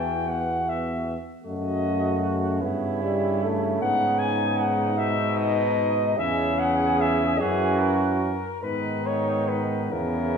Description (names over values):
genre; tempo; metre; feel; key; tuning
classical, hymn-like piece for brass band; 50 BPM (dotted quarters); 6/8; uneven beats, rubato; unclear; A4 = 444 Hz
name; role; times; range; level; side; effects
dark cornet; melody; 0.0-10.4 s; G#4 to G#5; -26 LUFS; left 3 dB; none
warm flugelhorn; second line; 0.0-10.4 s; D#4 to G#4; -31 LUFS; right 6 dB; none
brilliant trombone; accompaniment; 0.0-10.4 s; B2 to E3; -31 LUFS; right 4 dB; none
clear euphonium; accompaniment; 0.0-10.4 s; G3 to C#4; -30 LUFS; left 2 dB; none
mellow tuba; bass; 0.0-10.4 s; E2 to G#2; -28 LUFS; equal; none
room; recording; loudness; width
wet recital hall reverb, RT60 1.3 s; recorded in a church or concert hall; -22 LUFS; side -6 dB against mid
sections
0.0-10.4 A section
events
none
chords
0.0 E5; 1.5 D#dim/F#; 2.6 Em/G; 3.8 G#m; 6.2 C#m/E; 7.4 F#; 8.6 G#m